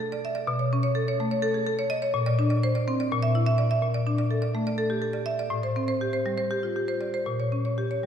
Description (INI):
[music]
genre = classical, contemporary piece for solo marimba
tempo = 248 BPM (eighths)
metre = 7/8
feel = rubato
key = unclear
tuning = A4 = 442 Hz
[part]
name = marimba with medium hard mallets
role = solo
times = 0.0-8.1 s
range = A2 to E5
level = -24 LUFS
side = equal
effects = none
[sound]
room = wet church reverb, RT60 3.2 s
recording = recorded in a church or concert hall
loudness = -24 LUFS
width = side -8 dB against mid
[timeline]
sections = 0.0-8.1 A section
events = none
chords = 0.5 Aadd9/B; 2.1 Bbadd9; 3.1 Dsus2/Bb; 3.8 Bbmaj7; 5.5 Am7; 7.3 Bbm6